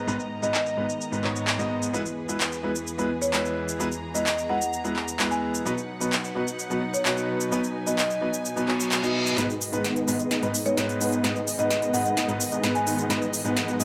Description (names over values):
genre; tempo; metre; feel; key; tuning
EDM, festival progressive house; 129 BPM; 4/4; straight; G# minor; A4 = 440 Hz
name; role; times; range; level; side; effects
bright concert grand piano; accompaniment; 0.0-13.8 s; G#2 to D#5; -31 LUFS; equal; digital delay
rich studio string section; sustained chords; 0.0-13.8 s; E2 to A#5; -36 LUFS; equal; low-pass filter
big-room dance drum kit; drums; 0.1-13.8 s; cabasa, handclaps, hi-hat, snare drum; -31 LUFS; equal; high-pass filter on cymbals, low-pass filter on cymbals, high-pass filter on perc, low-pass filter on perc, high-pass filter on snare, low-pass filter on snare, high-pass filter on hats, low-pass filter on hats, high-pass filter on room, low-pass filter on room
marimba with medium mallets; melody; 0.4-13.1 s; C#5 to G#5; -32 LUFS; equal; digital delay
reverse cymbal and riser; sound effects; 8.6-13.8 s; none; -36 LUFS; equal; none
supersaw chords; riff; 9.4-13.8 s; G#3 to F#5; -30 LUFS; equal; low-pass filter, digital delay
room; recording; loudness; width
wet recital hall reverb, RT60 1.4 s; none; -26 LUFS; mono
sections
0.0-9.4 A section; 9.4-13.8 B section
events
reverse cymbal 8.6-9.4; build-up 9.4-13.8; drum fill 9.4-13.8; filter sweep on supersaw synth 9.4-13.8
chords
0.0 G#m; 1.9 E; 5.7 B; 9.4 G#m